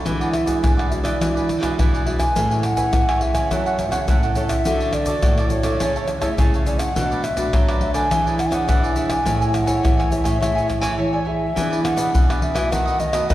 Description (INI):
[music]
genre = samba and choro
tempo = 104 BPM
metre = 4/4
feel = straight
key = A major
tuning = A4 = 440 Hz
[part]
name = cavaquinho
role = accompaniment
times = 0.0-13.3 s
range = D4 to A5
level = -28 LUFS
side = right 2 dB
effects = none
[part]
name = nylon-string guitar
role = accompaniment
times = 0.0-13.3 s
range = A2 to C#5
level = -28 LUFS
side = left 1 dB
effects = none
[part]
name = nylon-string guitar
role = bass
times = 0.1-13.3 s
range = F#2 to F#3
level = -24 LUFS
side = right 2 dB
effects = none
[part]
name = tube shaker, surdo, pandeiro and tamborim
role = percussion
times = 0.1-13.3 s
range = none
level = -21 LUFS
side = equal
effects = none
[part]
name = baroque flute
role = melody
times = 0.2-13.3 s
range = C#5 to G#5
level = -24 LUFS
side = left 1 dB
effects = none
[sound]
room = wet church reverb, RT60 3.4 s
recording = recorded in a church or concert hall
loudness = -17 LUFS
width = side -14 dB against mid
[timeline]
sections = 0.0-11.6 A section; 11.6-13.3 B section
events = none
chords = 0.1 E9; 2.4 Amaj9; 3.5 F#m7; 4.7 Dmaj7; 5.8 Amaj7/C#; 7.0 Bm7; 8.1 E6; 9.3 Amaj7; 11.6 E7; 12.7 B7/D#